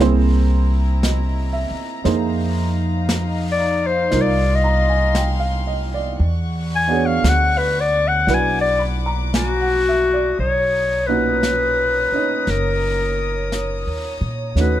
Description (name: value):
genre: jazz ballad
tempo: 58 BPM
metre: 4/4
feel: swing 66% on 8ths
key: B major from 10.4 s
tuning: A4 = 440 Hz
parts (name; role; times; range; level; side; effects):
- warm upright piano; accompaniment; 0.0-14.8 s; A#2 to B5; -24 LUFS; right 6 dB; none
- warm studio string section; sustained chords; 0.0-14.8 s; Eb4 to D#6; -30 LUFS; left 2 dB; none
- upright bass; bass; 0.0-14.8 s; F#1 to A#2; -20 LUFS; equal; none
- jazz brush drum kit; drums; 0.0-14.8 s; brushed snare drum, hi-hat, snare drum; -27 LUFS; equal; none
- breathy clarinet; melody; 3.5-14.8 s; F#4 to G#5; -18 LUFS; left 2 dB; plate reverb
room: light reverb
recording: none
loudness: -16 LUFS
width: side -12 dB against mid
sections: 0.0-10.4 A section; 10.4-14.8 B section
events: clarinet solo 0.0-10.4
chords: 0.0 Caug7; 2.1 Fm7; 6.2 E13; 10.4 Bmaj9